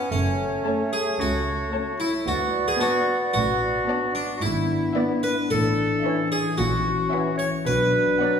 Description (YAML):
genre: cinematic, playful, whimsical film cue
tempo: 111 BPM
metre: 4/4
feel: straight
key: F# minor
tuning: A4 = 439 Hz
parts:
  - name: harpsichord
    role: melody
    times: 0.0-8.4 s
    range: C#4 to C#5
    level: -29 LUFS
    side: equal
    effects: none
  - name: small flute group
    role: second line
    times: 0.0-8.3 s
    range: C#5 to D5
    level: -33 LUFS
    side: right 1 dB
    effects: none
  - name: warm bassoon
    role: accompaniment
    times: 0.0-8.4 s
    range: E3 to B3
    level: -30 LUFS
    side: right 1 dB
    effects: none
  - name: clear clarinet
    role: second line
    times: 0.1-8.4 s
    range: C#4 to C#5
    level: -26 LUFS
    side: equal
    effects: none
  - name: warm studio cello section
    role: bass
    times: 0.1-8.1 s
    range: C#2 to B2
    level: -31 LUFS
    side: right 2 dB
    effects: none
  - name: warm studio double bass section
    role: bass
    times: 0.1-8.1 s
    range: F#1 to D2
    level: -32 LUFS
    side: right 3 dB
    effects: none
  - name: dark studio viola section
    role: accompaniment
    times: 0.6-8.4 s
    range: A3 to C#4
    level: -33 LUFS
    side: right 1 dB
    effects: none
  - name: warm studio violin section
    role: melody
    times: 0.7-8.4 s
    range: E5 to A5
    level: -39 LUFS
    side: left 2 dB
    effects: none
  - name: warm symphonic violin section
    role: second line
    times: 0.7-8.4 s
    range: C#5 to E5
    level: -36 LUFS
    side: left 3 dB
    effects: none
  - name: dark French horn section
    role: sustained chords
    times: 0.7-8.4 s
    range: E3 to D4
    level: -28 LUFS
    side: left 4 dB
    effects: none
room: wet recital hall reverb, RT60 1.7 s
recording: recorded in a church or concert hall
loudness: -21 LUFS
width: side -7 dB against mid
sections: 0.0-8.4 A section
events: none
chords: 0.1 F#m; 2.3 D6; 4.4 E7/G#; 5.5 A; 6.6 F#7/A#; 7.7 Bm